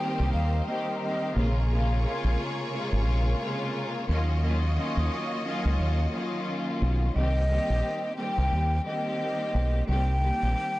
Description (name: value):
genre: hip hop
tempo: 88 BPM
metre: 4/4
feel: swing 58% on 16ths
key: C phrygian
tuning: A4 = 440 Hz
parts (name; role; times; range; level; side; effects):
- breathy mellow concert flute; melody; 0.0-1.3, 7.1-10.8 s; Eb5 to G5; -31 LUFS; equal; high-pass filter, low-pass filter, tape echo
- warm studio string section; accompaniment; 0.0-10.8 s; C3 to G4; -31 LUFS; left 1 dB; cassette tape, high-pass filter, low-pass filter
- lush unison pad; sustained chords; 0.0-7.1 s; Bb4 to Eb6; -38 LUFS; equal; chorus, phaser, high-pass filter, low-pass filter
- bright studio string section; stabs; 0.0-7.1 s; G3 to Eb5; -38 LUFS; left 1 dB; high-pass filter, low-pass filter, tape echo
- deep dub fingered electric bass; bass; 0.2-10.5 s; Ab1 to Eb2; -24 LUFS; equal; tube saturation
room: little or no reverb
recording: dry, gritty hardware recording, transformer saturation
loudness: -25 LUFS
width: side -17 dB against mid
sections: 0.0-7.2 A section; 7.2-10.8 B section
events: none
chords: 0.0 Cm7; 1.4 Bbm7; 4.1 Ebm7; 7.2 Cm7